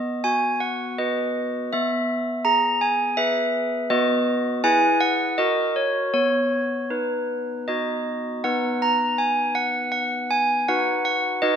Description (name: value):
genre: classical, tune for handbells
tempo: 81 BPM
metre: 3/4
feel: straight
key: B major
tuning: A4 = 439 Hz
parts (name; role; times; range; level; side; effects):
- handbells; solo; 0.0-11.6 s; B3 to A#5; -20 LUFS; equal; none
room: wet scoring stage reverb, RT60 1.7 s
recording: none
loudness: -20 LUFS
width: side -8 dB against mid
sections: 0.0-8.4 A section; 8.4-11.6 B section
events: none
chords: 0.0 B; 1.7 E/B; 3.9 B; 4.6 E; 5.4 F#; 6.1 B; 10.7 B/D#